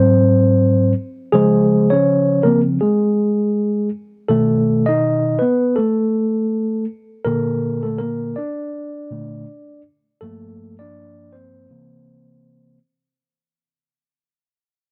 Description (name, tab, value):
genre	hip hop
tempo	81 BPM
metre	4/4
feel	swing 57% on 16ths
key	unclear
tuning	A4 = 440 Hz
part	mellow tine electric piano	solo	0.0-12.8 s	G2 to D#5	-17 LUFS	equal	none
room	little or no reverb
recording	dry, close 1970s-style studio recording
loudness	-17 LUFS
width	mono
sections	0.0-13.2 A section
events	fade-out 0.0-13.2; tine electric piano solo 0.0-13.2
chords	0.0 Ab7; 1.3 Dbmaj7; 4.3 B7; 7.3 Bbmaj7; 10.2 Gm9; 11.7 C7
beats	0.60 | 1.34 2.08 2.82 3.56 | 4.30 5.04 5.78 6.52 | 7.26 8.01 8.74 9.49 | 10.23 10.97 11.71 12.45